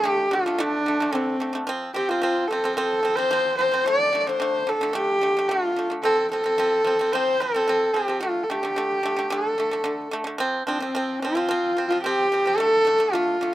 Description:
mongolian traditional, Mongolian folk; 110 BPM; 4/4; straight; F gong mode; A4 = 440 Hz
clear horsehead fiddle; melody; 0.0-13.5 s; C4 to D5; -21 LUFS; equal; slapback echo
pipa; arpeggios; 0.0-13.5 s; D3 to C4; -27 LUFS; right 1 dB; slapback echo
little or no reverb; recorded outdoors, with no room sound; -20 LUFS; side -14 dB against mid
0.0-13.5 A section
0.0 D5; 1.7 F5; 3.9 D5; 6.0 F5; 8.2 D5; 10.4 F5; 12.6 D5

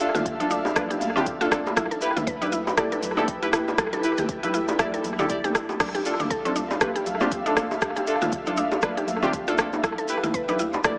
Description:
afro house; 119 BPM; 4/4; swing 58% on 16ths; D dorian; A4 = 440 Hz
ethereal airy pad; sustained chords; 0.0-11.0 s; D4 to F5; -34 LUFS; equal; ensemble chorus, built-in reverb, tremolo, sidechain pumping
deep mellow chord stab; stabs; 0.0-10.9 s; D4 to D5; -31 LUFS; equal; chorus, sidechain pumping, analog delay
afro-pop drum kit; drums; 0.0-11.0 s; crash cymbal, hi-hat, rim click, toms; -30 LUFS; equal; analog delay
mallet-like synth pluck; arpeggios; 0.1-10.9 s; C4 to E5; -31 LUFS; equal; chorus, sidechain pumping, analog delay
round analog bass; bass; 0.1-11.0 s; A1 to D2; -45 LUFS; equal; sidechain pumping
bongos; percussion; 0.1-10.8 s; -34 LUFS; equal
congas; percussion; 0.1-11.0 s; -38 LUFS; equal; analog delay
maracas; percussion; 0.1-11.0 s; -44 LUFS; equal
electronic kick drum; drums; 0.3-11.0 s; -37 LUFS; equal
moderate plate reverb, RT60 2.1 s; echo-heavy mix, small speaker sound; -25 LUFS; mono
0.0-11.0 A section
0.0 Dm; 1.8 Em/D; 5.8 Dm; 9.8 Em/D

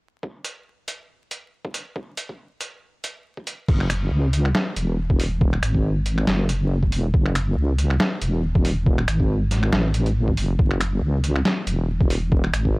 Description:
deep dubstep; 139 BPM; 4/4; swing 55% on 16ths, half-time; F# minor; A4 = 440 Hz
electronic kick drum; drums; 0.2-12.7 s; -20 LUFS; equal; overdrive, high-pass filter on kick, high-pass filter on room
trip hop sampler-style drum kit; drums; 0.4-12.6 s; crash cymbal, finger snaps, hi-hat, snare drum; -25 LUFS; equal; overdrive
deep soft wobble bass; bass; 3.7-12.8 s; E1 to C#2; -20 LUFS; equal; chorus, transformer saturation
little or no reverb; dry, gritty hardware recording, transformer saturation, vinyl crackle; -19 LUFS; side -26 dB against mid
0.2-3.7 A section; 3.7-12.8 B section

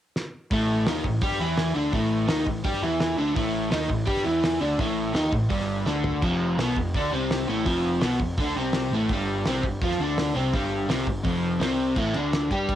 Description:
garage rock duo or trio; 167 BPM; 4/4; straight; A minor; A4 = 440 Hz
cloth-damped thuddy drum kit; drums; 0.2-12.8 s; crash cymbal, hi-hat, kick drum, ride cymbal, snare drum, toms; -29 LUFS; equal
crunchy overdriven guitar; riff; 0.5-12.8 s; F2 to G4; -24 LUFS; equal; cassette tape
fuzz picked electric bass; bass; 0.5-12.8 s; F1 to G2; -32 LUFS; equal; overdrive
light reverb; home recording on cassette; -22 LUFS; side -11 dB against mid
0.5-12.0 A section
drum fill 0.2-0.5, 5.9-6.2
0.0 N.C.; 0.5 A5; 6.2 F5; 9.1 G5; 12.0 N.C.

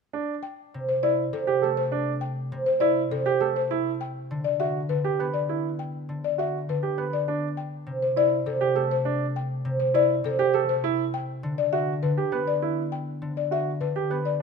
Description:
classical, minimalist pattern music; 101 BPM; 3/4; straight; A4 = 440 Hz
warm baby grand piano; arpeggios; 0.1-14.3 s; D4 to B4; -28 LUFS; right 9 dB
buzzing marimba with soft mallets; melody; 0.4-14.4 s; A4 to G5; -27 LUFS; left 13 dB
concert harp; accompaniment; 0.7-14.4 s; C3 to B3; -28 LUFS; right 2 dB
light reverb; close, detailed microphones; -23 LUFS; side -5 dB against mid
0.1-14.4 A section
0.1 D7(no3) (rootless); 3.7 E7(no3) (rootless); 7.3 Am; 10.8 G (rootless)

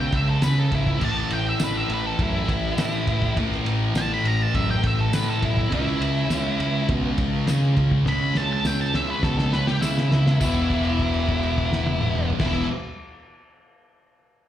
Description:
garage rock duo or trio; 102 BPM; 4/4; straight; E major; A4 = 440 Hz
octave-fuzz lead guitar; melody; 0.0-12.7 s; E4 to B5; -27 LUFS; equal; distortion, slapback echo
thick fuzz guitar; riff; 0.0-12.7 s; E2 to C#4; -23 LUFS; equal; distortion
fuzz picked electric bass; bass; 0.0-12.6 s; E1 to C#3; -27 LUFS; equal; overdrive
cloth-damped thuddy drum kit; drums; 0.1-12.5 s; crash cymbal, kick drum, ride cymbal, snare drum, toms; -27 LUFS; equal
tambourine; percussion; 0.4-10.7 s; -39 LUFS; left 2 dB
small room ambience; live gig heard through the venue's PA, club reverb; -20 LUFS; side -11 dB against mid
0.0-10.4 A section; 10.4-12.8 B section
drum fill 8.1-10.4; held note 10.4-12.4
0.0 C#m; 1.0 A5; 5.7 C#m; 10.4 E5

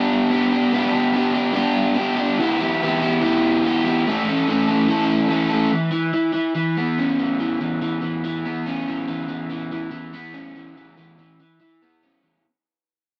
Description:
rock; 144 BPM; 4/4; straight; A4 = 438 Hz
crunchy overdriven guitar; solo; 0.0-12.5 s; E3 to A4; -21 LUFS; equal; spring reverb
light reverb; dry, close 1970s-style studio recording; -21 LUFS; mono
0.0-5.7 A section; 5.7-12.5 B section
fade-out 5.7-12.5
0.0 G; 2.4 Em; 4.1 A; 5.7 C#m7/E

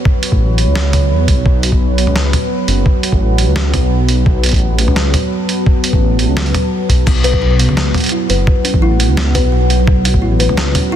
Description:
half-time drum and bass; 171 BPM; 4/4; half-time; A4 = 445 Hz
deep dark ambient pad; sustained chords; 0.0-11.0 s; F#3 to B5; -18 LUFS; right 1 dB; chorus, built-in reverb, sidechain pumping
electronic kick drum; drums; 0.1-10.2 s; -13 LUFS; equal; studio reverb
boom bap sampler-style drum kit; drums; 0.2-10.8 s; crash cymbal, hi-hat, snare drum, toms; -19 LUFS; right 1 dB; studio reverb
dark detuned saw bass; bass; 0.3-10.7 s; F#1 to E2; -14 LUFS; equal
kalimba; arpeggios; 7.1-11.0 s; B2 to B4; -19 LUFS; left 3 dB; digital delay
digital ambience; dense, heavily limited modern master; -11 LUFS; side -10 dB against mid
0.0-11.0 A section
0.0 B5

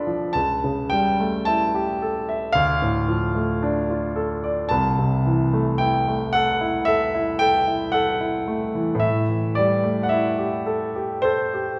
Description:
classical, romantic nocturne for solo piano; 55 BPM; 4/4; rubato; A4 = 440 Hz
warm grand piano; solo; 0.0-11.8 s; C2 to C6; -22 LUFS; equal
wet recital hall reverb, RT60 1.6 s; recorded in a church or concert hall; -22 LUFS; mono
0.0-11.8 A section
0.4 A7/C#; 2.6 Dm; 4.7 Am/C; 9.0 Am7

